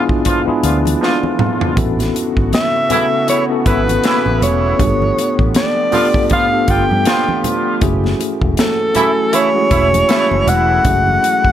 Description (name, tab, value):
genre	lush 1970s-style soul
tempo	79 BPM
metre	4/4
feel	swing 58% on 16ths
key	F# minor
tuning	A4 = 442 Hz
part	breathy alto saxophone	melody	0.0-11.5 s	A4 to G5	-16 LUFS	equal	none
part	tine electric piano	accompaniment	0.0-11.5 s	G#3 to G#5	-19 LUFS	left 2 dB	fast stereo tremolo
part	evolving wavetable pad	sustained chords	0.0-11.5 s	C#3 to G4	-25 LUFS	equal	chorus, built-in reverb
part	modern studio drum kit	drums	0.1-11.5 s	hi-hat, kick drum, snare drum, toms	-19 LUFS	equal	none
part	warm horn section	stabs	0.3-10.8 s	C#3 to F4	-20 LUFS	right 2 dB	none
part	vintage muted fingered electric bass	bass	0.5-11.5 s	E1 to G2	-18 LUFS	equal	none
part	congas	percussion	0.6-11.4 s	none	-25 LUFS	right 6 dB	none
room	small room ambience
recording	none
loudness	-12 LUFS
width	side -10 dB against mid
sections	0.0-11.5 A section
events	drum fill 1.0-1.8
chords	0.0 E7b9; 1.8 A69; 4.8 G9; 7.8 F#m9